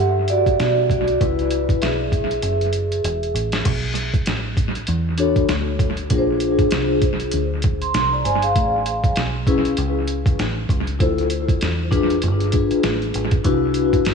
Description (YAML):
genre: hip hop, jazz-hop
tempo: 98 BPM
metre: 4/4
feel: swing 58% on 16ths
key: B dorian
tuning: A4 = 440 Hz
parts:
  - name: vibraphone with soft mallets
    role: accompaniment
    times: 0.0-14.1 s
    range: C#4 to B#5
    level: -20 LUFS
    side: left 1 dB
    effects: analog delay
  - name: deep dub fingered electric bass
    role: bass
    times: 0.0-14.1 s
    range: E1 to B2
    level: -24 LUFS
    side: right 1 dB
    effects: none
  - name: boom bap sampler-style drum kit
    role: drums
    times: 0.3-14.1 s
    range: crash cymbal, hi-hat, kick drum, snare drum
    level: -22 LUFS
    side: right 1 dB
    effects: vintage 12-bit sampler grit, analog delay
room: light reverb, digital ambience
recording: echo-heavy mix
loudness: -17 LUFS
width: side -5 dB against mid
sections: 0.0-3.7 A section; 3.7-14.1 B section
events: vibraphone solo 0.0-3.7; drum fill 2.4-3.7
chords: 0.0 Em9; 1.2 C#m7; 2.4 Eadd9; 3.7 Bm7; 6.1 A#9; 8.6 Amaj9; 11.0 Dm9; 12.2 G7b9; 13.5 Cmaj9#11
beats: 0.60 | 1.21 1.82 2.43 3.04 | 3.66 4.27 4.88 5.49 | 6.11 6.72 7.33 7.94 | 8.55 9.17 9.78 10.39 | 11.00 11.62 12.23 12.84 | 13.45 14.06